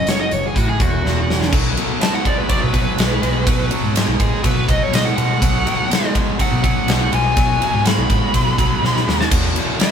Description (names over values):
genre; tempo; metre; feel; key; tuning
blues rock power trio and southern rock; 123 BPM; 4/4; straight; B mixolydian; A4 = 439 Hz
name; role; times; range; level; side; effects
bluesy overdriven lead guitar; melody; 0.0-9.9 s; F#4 to B5; -21 LUFS; equal; distortion
raw garage guitar; riff; 0.0-9.9 s; E2 to G#3; -22 LUFS; equal; overdrive
vintage muted fingered electric bass; bass; 0.0-9.5 s; E1 to B2; -21 LUFS; equal; none
huge arena drum kit; drums; 0.1-9.9 s; crash cymbal, hi-hat, kick drum, ride cymbal, snare drum; -18 LUFS; equal; none
room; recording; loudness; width
moderate studio reverb, RT60 0.8 s; band playing live in one room; -15 LUFS; side -8 dB against mid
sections
0.0-1.5 A section; 1.5-9.9 B section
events
drum fill 1.0-1.5, 8.8-9.3; lead electric guitar solo 1.5-9.9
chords
0.0 Esus2; 1.5 B5; 9.3 E5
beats
0.07 0.55 1.04 | 1.53 2.01 2.50 2.99 | 3.47 3.96 4.45 4.93 | 5.42 5.91 6.39 6.88 | 7.37 7.86 8.34 8.83 | 9.32 9.80